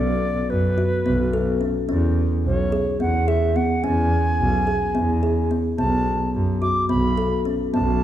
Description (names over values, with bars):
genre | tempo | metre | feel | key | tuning
contemporary instrumental, chamber music in an uneven meter | 215 BPM (eighths) | 7/8 | straight | B dorian | A4 = 440 Hz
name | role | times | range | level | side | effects
bright reedy baroque flute | melody | 0.0-8.0 s | B4 to D6 | -25 LUFS | equal | none
kalimba | arpeggios | 0.0-8.0 s | B3 to A4 | -23 LUFS | equal | none
clear double bass | bass | 0.0-8.0 s | B1 to F#2 | -22 LUFS | equal | none
room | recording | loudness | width
wet scoring stage reverb, RT60 1.6 s | minimal, uncompressed stereo recording | -19 LUFS | side -11 dB against mid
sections
0.0-8.0 A section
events
none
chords
0.0 Bm7; 1.9 E6; 5.8 B5